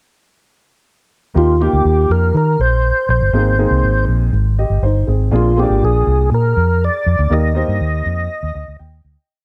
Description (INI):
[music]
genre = uptempo 1960s-style soul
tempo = 121 BPM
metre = 4/4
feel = straight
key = Eb major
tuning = A4 = 440 Hz
[part]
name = warm upright piano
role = accompaniment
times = 1.3-9.3 s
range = Bb3 to G5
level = -23 LUFS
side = equal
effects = none
[part]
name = tonewheel organ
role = melody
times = 1.4-8.8 s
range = F4 to Eb5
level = -20 LUFS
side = equal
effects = overdrive, chorus vibrato, slow rotary speaker
[part]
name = vintage muted fingered electric bass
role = bass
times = 1.4-9.2 s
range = G1 to Eb3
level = -17 LUFS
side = equal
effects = none
[sound]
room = light reverb, studio reverb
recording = dark, warm production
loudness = -15 LUFS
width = mono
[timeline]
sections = 1.4-9.3 A section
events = fade-out 7.3-9.3; upright piano fill 8.3-9.3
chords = 1.4 Ebadd9; 3.3 Abadd9; 5.3 Bb7; 7.3 Eb